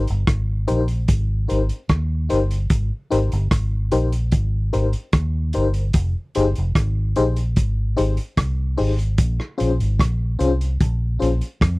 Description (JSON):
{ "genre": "lovers rock reggae", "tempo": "74 BPM", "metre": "4/4", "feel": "straight", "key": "Ab major", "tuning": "A4 = 440 Hz", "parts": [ { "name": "vintage muted fingered electric bass", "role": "bass", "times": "0.0-11.8 s", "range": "F1 to F2", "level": "-20 LUFS", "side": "equal", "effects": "none" }, { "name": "vintage drum kit", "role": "drums", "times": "0.1-11.8 s", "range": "hi-hat, kick drum, rim click", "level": "-20 LUFS", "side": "equal", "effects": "none" }, { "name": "FM electric piano with tremolo", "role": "accompaniment", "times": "0.7-11.3 s", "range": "Db4 to C5", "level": "-21 LUFS", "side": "left 3 dB", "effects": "none" } ], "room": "little or no reverb", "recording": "dry, close 1970s-style studio recording", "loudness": "-18 LUFS", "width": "side -22 dB against mid", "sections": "0.0-11.8 A section", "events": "none", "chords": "0.0 Abmaj7; 5.9 Fm7 (rootless); 9.2 Bbm9" }